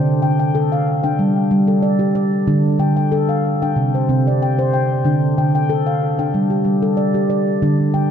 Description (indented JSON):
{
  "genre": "world meditative, meditative tuned percussion",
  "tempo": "93 BPM",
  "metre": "4/4",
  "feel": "swing 54% on 16ths",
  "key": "D minor",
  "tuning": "A4 = 441 Hz",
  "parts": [
    { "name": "handpan", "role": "solo", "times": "0.0-8.1 s", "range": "C3 to G5", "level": "-14 LUFS", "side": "equal", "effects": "dub echo" }
  ],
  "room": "wet plate reverb, RT60 2.6 s",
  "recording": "echo-heavy mix",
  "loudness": "-15 LUFS",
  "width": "side -8 dB against mid",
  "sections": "0.0-8.1 A section",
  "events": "none",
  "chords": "0.0 Dm; 1.2 G5; 2.5 Dm; 3.8 C5; 5.1 Dm; 6.3 G5"
}